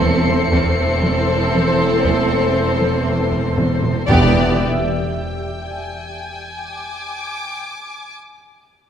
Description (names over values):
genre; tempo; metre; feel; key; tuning
cinematic, suspense film score; 59 BPM; 4/4; straight; unclear; A4 = 443 Hz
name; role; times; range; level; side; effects
dark symphonic violin section; melody; 0.0-4.7 s; C5 to D5; -24 LUFS; left 2 dB; none
warm symphonic violin section; second line; 0.0-4.7 s; G4 to A4; -25 LUFS; left 1 dB; none
rich studio viola section; accompaniment; 0.0-4.7 s; B3 to C4; -25 LUFS; right 2 dB; none
glassy FM pad; sustained chords; 0.0-4.7 s; A4 to E5; -26 LUFS; left 1 dB; ensemble chorus, built-in reverb
mellow French horn section; sustained chords; 0.0-4.6 s; C4 to A4; -26 LUFS; left 3 dB; none
mellow trombone section; sustained chords; 0.0-4.6 s; E3 to B3; -27 LUFS; right 3 dB; none
warm studio cello section; riff; 0.0-3.9 s; E2 to E3; -26 LUFS; equal; none
rich chamber double bass section; bass; 0.0-4.7 s; E1; -23 LUFS; right 2 dB; none
warm symphonic cello section; bass; 0.0-4.7 s; E2; -24 LUFS; right 2 dB; none
deep rumbling drone; drone; 0.0-4.7 s; E2; -29 LUFS; left 1 dB; built-in reverb
taiko ensemble; drums; 0.0-6.1 s; none; -25 LUFS; equal; none
warm symphonic violin section; texture; 0.0-8.1 s; G5 to C#7; -28 LUFS; left 2 dB; none
timpani; percussion; 4.1-4.6 s; E2; -23 LUFS; equal; none
impact; sound effects; 4.1-8.2 s; none; -28 LUFS; equal; none
room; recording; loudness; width
wet concert hall reverb, RT60 2.1 s; none; -15 LUFS; side -8 dB against mid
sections
0.0-4.6 A section; 4.6-8.7 B section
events
drum fill 3.6-4.6; impact 4.6-8.7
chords
0.0 Am/E; 4.1 Em7; 4.6 G5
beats
| 0.53 1.54 2.56 3.58 | 4.59 5.61 6.63 7.64